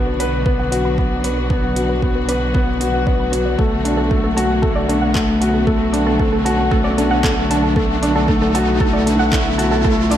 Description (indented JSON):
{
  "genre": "piano and strings electronica",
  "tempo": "115 BPM",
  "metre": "4/4",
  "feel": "straight",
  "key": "unclear",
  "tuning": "A4 = 440 Hz",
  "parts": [
    { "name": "dark studio string section", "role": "sustained chords", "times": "0.0-10.2 s", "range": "B2 to F#4", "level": "-23 LUFS", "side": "left 1 dB", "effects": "sidechain pumping" },
    { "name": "felt-muted upright piano", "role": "riff", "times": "0.0-10.2 s", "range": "A3 to B4", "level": "-18 LUFS", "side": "left 2 dB", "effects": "ping-pong delay" },
    { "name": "warm sub bass", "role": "bass", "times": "0.0-10.2 s", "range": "B1", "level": "-24 LUFS", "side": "right 1 dB", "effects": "tube saturation, sidechain pumping" },
    { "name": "riser", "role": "sound effects", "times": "0.2-10.2 s", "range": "none", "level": "-28 LUFS", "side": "right 2 dB", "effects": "none" },
    { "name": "warbly dusty pluck", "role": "arpeggios", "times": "0.1-10.2 s", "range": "A4 to D6", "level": "-25 LUFS", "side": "right 3 dB", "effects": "chorus, sidechain pumping, ping-pong delay" },
    { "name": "deep house drum kit", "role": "drums", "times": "0.2-10.2 s", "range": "handclaps, hi-hat", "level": "-26 LUFS", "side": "right 1 dB", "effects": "overdrive, studio reverb" },
    { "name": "electronic kick drum", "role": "drums", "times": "0.5-10.0 s", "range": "none", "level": "-20 LUFS", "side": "right 1 dB", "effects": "overdrive, studio reverb" }
  ],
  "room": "wet recital hall reverb, RT60 1.4 s, digital ambience",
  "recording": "dark, warm production",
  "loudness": "-14 LUFS",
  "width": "side -11 dB against mid",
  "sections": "0.0-10.2 A section",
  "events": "build-up 0.0-10.2; filter sweep on synth arpeggio sound 0.0-10.2; riser 0.2-10.2",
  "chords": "0.0 Bm; 3.6 D6/B",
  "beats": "0.46 0.98 | 1.50 2.03 2.55 3.07 | 3.59 4.11 4.63 5.16 | 5.68 6.20 6.72 7.24 | 7.76 8.29 8.81 9.33 | 9.85"
}